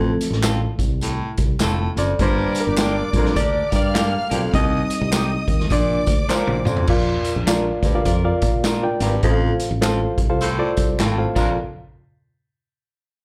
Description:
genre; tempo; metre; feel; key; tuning
uptempo 1960s-style soul; 102 BPM; 4/4; swing 62% on 8ths; Bb major; A4 = 440 Hz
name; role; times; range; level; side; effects
reed electric piano; accompaniment; 0.0-11.6 s; Bb1 to G5; -25 LUFS; equal; slapback echo
raspy baritone saxophone; riff; 0.0-11.6 s; Eb2 to Bb2; -28 LUFS; equal; slapback echo
fingered electric bass; bass; 0.0-11.6 s; F1 to Bb2; -25 LUFS; equal; none
vintage drum kit; drums; 0.2-11.5 s; crash cymbal, hi-hat, kick drum, snare drum, toms; -25 LUFS; equal; none
tambourine and handclaps; percussion; 0.2-11.6 s; none; -33 LUFS; equal; none
electric guitar through a small old amp; stabs; 0.4-11.5 s; Bb3 to Bb4; -29 LUFS; equal; slapback echo
clear horn section; second line; 2.2-4.3, 8.0-11.5 s; F3 to D5; -32 LUFS; equal; slapback echo
warm studio violin section; second line; 2.2-6.9 s; D5 to F6; -31 LUFS; equal; slapback echo
room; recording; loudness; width
little or no reverb; live gig heard through the venue's PA, club reverb; -20 LUFS; mono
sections
0.0-6.9 A section; 6.9-11.6 B section; 11.6-13.2 C section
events
reed electric piano solo 0.0-6.9; drum fill 6.3-6.9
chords
0.0 F/A; 2.2 Gm; 4.5 Cm; 5.7 Bb; 9.2 F/A; 11.3 Bb; 11.6 N.C.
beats
0.43 1.02 1.60 | 2.19 2.78 3.37 3.95 | 4.54 5.13 5.71 6.30 | 6.89 7.48 8.06 8.65 | 9.24 9.83 10.41 11.00

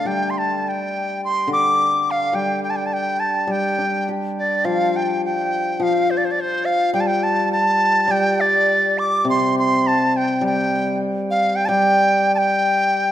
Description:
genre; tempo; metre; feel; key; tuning
chinese traditional, Chinese chamber ensemble; 105 BPM; 2/4; rubato; G shang mode; A4 = 440 Hz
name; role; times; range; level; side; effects
bright reedy large dizi; melody; 0.0-13.1 s; C5 to D6; -18 LUFS; equal; none
hammered dulcimer; accompaniment; 0.0-13.1 s; C3 to G4; -22 LUFS; left 1 dB; none
room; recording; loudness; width
moderate concert hall reverb, RT60 2.3 s; minimal, uncompressed stereo recording; -17 LUFS; side -11 dB against mid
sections
0.0-4.7 A section; 4.7-13.1 B section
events
none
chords
none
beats
| 0.07 0.65 | 1.23 1.79 | 2.36 2.93 | 3.50 4.08 | 4.67 5.25 | 5.83 6.39 | 6.96 7.53 | 8.10 8.69 | 9.27 9.85 | 10.43 10.99 | 11.56 12.13 | 12.69

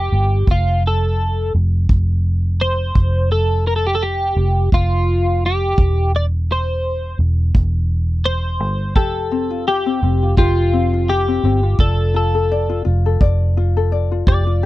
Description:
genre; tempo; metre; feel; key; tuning
acoustic pop; 85 BPM; 4/4; swing 55% on 16ths; F major; A4 = 440 Hz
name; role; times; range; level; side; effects
twelve-string electric guitar; melody; 0.0-14.7 s; F4 to D5; -20 LUFS; equal; analog chorus
vintage muted fingered electric bass; bass; 0.0-14.7 s; E1 to G1; -17 LUFS; equal; none
kick drum; drums; 0.5-14.4 s; none; -16 LUFS; equal; none
ukulele; accompaniment; 9.0-14.7 s; C4 to D5; -21 LUFS; left 8 dB; none
room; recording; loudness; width
little or no reverb; dry, close 1970s-style studio recording; -15 LUFS; side -16 dB against mid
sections
0.0-14.7 A section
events
none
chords
0.5 F; 5.8 C/E; 9.0 Fsus2; 11.8 Dm/F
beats
| 0.47 1.18 1.89 2.60 | 3.31 4.01 4.72 5.43 | 6.14 6.84 7.55 8.26 | 8.96 9.67 10.38 11.08 | 11.79 12.50 13.20 13.91 | 14.62

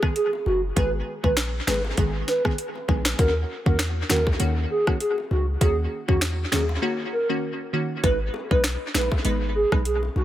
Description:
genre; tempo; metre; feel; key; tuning
dancehall; 99 BPM; 4/4; swing 56% on 16ths; G# minor; A4 = 440 Hz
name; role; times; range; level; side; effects
wavetable chord stab; accompaniment; 0.0-9.8 s; D#3 to B4; -29 LUFS; equal; dub echo
island pop drum kit; drums; 0.0-10.0 s; finger snaps, hi-hat, kick drum, rim click, snare drum; -25 LUFS; equal; dub echo
hollow clarinet-like synth lead; melody; 0.2-10.2 s; F#4 to B4; -26 LUFS; right 1 dB; chorus, dub echo
bongos; percussion; 0.3-10.2 s; none; -38 LUFS; left 4 dB; dub echo
clean 808-style bass; bass; 0.5-10.2 s; F#1 to E2; -26 LUFS; equal; none
room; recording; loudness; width
light reverb; echo-heavy mix; -21 LUFS; side -13 dB against mid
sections
0.0-8.0 A section; 8.0-10.2 B section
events
break 6.8-8.0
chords
0.0 G#m; 3.2 D#m7; 8.0 G#m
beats
0.16 | 0.77 1.37 1.98 2.58 | 3.19 3.79 4.40 5.01 | 5.61 6.22 6.83 7.43 | 8.04 8.64 9.25 9.86

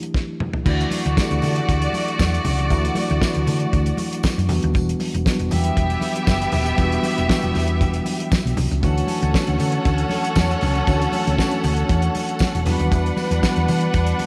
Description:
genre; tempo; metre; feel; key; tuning
disco; 117 BPM; 4/4; straight; D major; A4 = 440 Hz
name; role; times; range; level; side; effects
mellow tine electric piano; accompaniment; 0.0-14.3 s; E3 to A4; -28 LUFS; equal; none
damped 70s drum kit; drums; 0.0-14.3 s; crash cymbal, hi-hat, kick drum, snare drum, toms; -25 LUFS; equal; none
congas; percussion; 0.2-14.3 s; none; -33 LUFS; equal; none
rich studio string section; second line; 0.7-14.3 s; A3 to F#5; -27 LUFS; equal; none
hollow-body short-scale fingered electric bass; bass; 0.7-14.1 s; Eb1 to E3; -23 LUFS; equal; none
tambourine; percussion; 0.7-14.3 s; none; -42 LUFS; equal; none
room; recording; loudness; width
moderate echo chamber reverb, RT60 2.2 s; none; -20 LUFS; mono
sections
0.7-14.3 A section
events
drum fill 0.1-0.7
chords
0.0 A7sus4; 0.7 Dadd9; 4.5 Em9; 8.8 Dmaj9; 12.7 Em9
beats
0.15 | 0.66 1.17 1.68 2.19 | 2.70 3.21 3.72 4.23 | 4.74 5.25 5.76 6.27 | 6.79 7.30 7.81 8.32 | 8.83 9.34 9.85 10.36 | 10.87 11.38 11.89 12.41 | 12.92 13.43 13.94

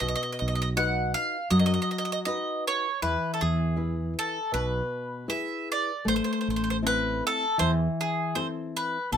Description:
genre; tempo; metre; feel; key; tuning
italian folk, Italian serenade; 79 BPM; 4/4; swing 53% on 8ths; A harmonic minor; A4 = 439 Hz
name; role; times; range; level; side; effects
bowl-back mandolin; melody; 0.0-9.2 s; G#4 to F#5; -28 LUFS; right 1 dB; none
nylon-string guitar; accompaniment; 0.0-9.2 s; B2 to B4; -30 LUFS; left 2 dB; none
mellow fretless electric bass; bass; 0.0-9.2 s; A1 to F#2; -28 LUFS; right 1 dB; none
room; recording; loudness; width
moderate studio reverb, RT60 0.5 s; minimal, uncompressed stereo recording; -25 LUFS; side -8 dB against mid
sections
0.0-9.2 A section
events
none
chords
0.0 B; 3.0 E; 6.1 Am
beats
| 0.01 0.77 1.51 2.26 | 3.01 3.77 4.53 5.29 | 6.07 6.83 7.60 8.36 | 9.12

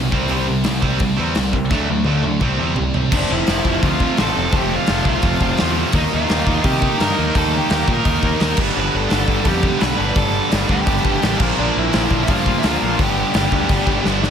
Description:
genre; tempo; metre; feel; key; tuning
punk rock; 170 BPM; 4/4; straight; unclear; A4 = 439 Hz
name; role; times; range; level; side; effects
distorted electric guitar; riff; 0.0-14.3 s; F2 to Eb4; -22 LUFS; right 10 dB; overdrive
overdriven electric guitar; riff; 0.0-14.3 s; F2 to Eb4; -24 LUFS; left 12 dB; none
scooped high-gain guitar; riff; 0.0-14.3 s; F2 to Eb4; -25 LUFS; equal; distortion
growling picked electric bass; bass; 0.0-14.3 s; F1 to C3; -23 LUFS; equal; overdrive
big rock drum kit; drums; 0.1-14.3 s; crash cymbal, hi-hat, kick drum, snare drum, toms; -20 LUFS; equal; none
dark smooth lead guitar; melody; 3.1-14.0 s; D4 to B5; -23 LUFS; equal; overdrive
room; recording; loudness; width
light reverb; none; -15 LUFS; side -8 dB against mid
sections
0.0-3.1 A section; 3.1-14.3 B section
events
drum fill 1.7-3.1, 14.1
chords
0.1 C5; 1.7 D; 2.4 C; 3.1 F; 5.9 Eb; 8.6 G; 11.4 Bb; 13.0 G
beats
| 0.30 0.66 1.01 1.36 | 1.71 2.07 2.42 2.77 | 3.12 3.48 3.83 4.18 | 4.53 4.88 5.24 5.59 | 5.94 6.29 6.64 7.00 | 7.35 7.70 8.05 8.41 | 8.76 9.11 9.46 9.82 | 10.17 10.52 10.88 11.23 | 11.58 11.94 12.29 12.64 | 13.00 13.35 13.70 14.06

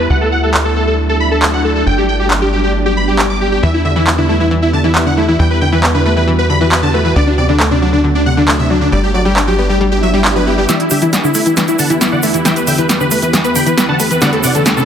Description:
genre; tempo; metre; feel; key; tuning
uplifting trance; 136 BPM; 4/4; straight; E minor; A4 = 439 Hz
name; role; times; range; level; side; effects
dense compressed supersaw; melody; 0.0-14.8 s; D4 to D6; -16 LUFS; equal; low-pass filter, digital delay
shimmering ambient pad; sustained chords; 0.0-14.8 s; D2 to B4; -19 LUFS; equal; chorus, built-in reverb
tight sequencer bass; bass; 0.0-10.7 s; G1 to E2; -16 LUFS; equal; none
downlifter, swell and riser; sound effects; 0.0-0.1, 10.0-14.8 s; none; -26 LUFS; equal; none
big-room dance drum kit; drums; 0.5-14.7 s; handclaps, hi-hat, snare drum; -17 LUFS; right 1 dB; soft clipping on snare
analog pluck; arpeggios; 3.6-14.8 s; C3 to D4; -16 LUFS; left 2 dB; wide subtle chorus, digital delay
egg shaker; percussion; 10.7-14.8 s; none; -23 LUFS; right 4 dB; none
room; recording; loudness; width
moderate lush hall reverb, RT60 1.9 s; dense, heavily limited modern master; -10 LUFS; side -8 dB against mid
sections
0.0-10.7 A section; 10.7-14.8 B section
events
swell 10.0-10.7; build-up 10.7-14.8; drum fill 10.7-14.8; filter sweep on supersaw synth 10.7-14.8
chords
0.1 D; 1.9 G; 3.6 Em; 7.2 D; 8.9 G; 10.7 Em; 14.2 D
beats
| 0.10 0.54 0.98 1.42 | 1.86 2.31 2.75 3.19 | 3.63 4.07 4.51 4.95 | 5.39 5.83 6.28 6.72 | 7.16 7.60 8.04 8.48 | 8.92 9.36 9.80 10.25 | 10.69 11.13 11.57 12.01 | 12.45 12.89 13.34 13.78 | 14.22 14.66

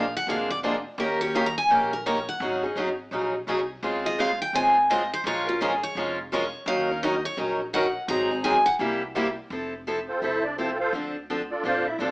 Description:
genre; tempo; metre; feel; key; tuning
acoustic string swing (jazz manouche); 169 BPM; 4/4; swing 63% on 8ths; unclear; A4 = 440 Hz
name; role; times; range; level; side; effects
picked steel-string acoustic guitar; melody; 0.0-8.7 s; F4 to Bb5; -24 LUFS; equal; none
picked steel-string acoustic guitar; accompaniment; 0.0-12.1 s; C3 to Bb4; -27 LUFS; equal; none
picked swing-style acoustic guitar; accompaniment; 0.0-9.3 s; C3 to Bb4; -30 LUFS; right 1 dB; none
upright bass; bass; 0.0-12.1 s; F1 to Eb2; -39 LUFS; equal; none
musette accordion; second line; 10.1-12.1 s; C4 to F5; -25 LUFS; right 1 dB; none
room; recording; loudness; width
moderate studio reverb, RT60 0.8 s; AM radio sound; -23 LUFS; side -24 dB against mid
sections
0.0-9.5 A section; 9.5-12.1 A section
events
steel-string acoustic guitar solo 0.0-9.5; accordion solo 9.5-12.1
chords
0.0 Bb7; 1.0 Eb7; 2.4 Ab7sus4; 3.8 Dbmaj7; 5.2 Bbm7; 6.7 Ebm9; 8.1 Ab7; 8.8 C7; 9.5 Fmaj7; 10.9 Dm7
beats
0.28 0.64 | 0.99 1.35 1.70 2.06 | 2.41 2.77 3.12 3.48 | 3.83 4.18 4.54 4.89 | 5.25 5.60 5.96 6.31 | 6.67 7.02 7.38 7.73 | 8.09 8.44 8.80 9.15 | 9.51 9.86 10.22 10.57 | 10.93 11.29 11.64 12.00

